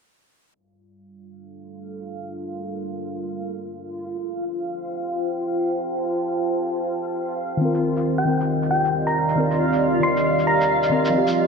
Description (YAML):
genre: future garage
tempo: 136 BPM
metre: 4/4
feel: swing 62% on 16ths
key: G minor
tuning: A4 = 437 Hz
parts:
  - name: backwards swelling texture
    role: texture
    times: 2.1-11.5 s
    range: F4 to F5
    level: -27 LUFS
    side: equal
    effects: built-in reverb, analog chorus
  - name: dark analog pad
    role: sustained chords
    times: 0.6-11.5 s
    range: Eb3 to A5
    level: -25 LUFS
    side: right 2 dB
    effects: chorus, vintage 12-bit sampler grit
  - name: muted felt-like synth keys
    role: accompaniment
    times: 7.6-11.5 s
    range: Eb3 to Bb4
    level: -22 LUFS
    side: left 2 dB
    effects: chorus, diffuse ambient delay
  - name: shaker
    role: drums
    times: 7.7-11.3 s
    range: none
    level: -39 LUFS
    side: left 1 dB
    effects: small room ambience
  - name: thumb-piano-like synth pluck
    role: melody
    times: 8.2-10.8 s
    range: G5 to C6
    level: -23 LUFS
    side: equal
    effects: chorus, analog delay
room: wet plate reverb, RT60 1.6 s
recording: dreamy mix soaked in reverb, low-pass filter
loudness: -20 LUFS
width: side -5 dB against mid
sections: 0.5-11.5 A section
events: fade-in on analog synth pad 0.5-11.5; filter sweep 0.5-11.5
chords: 0.5 Gm9; 4.1 Fadd9; 7.6 Cm7/Eb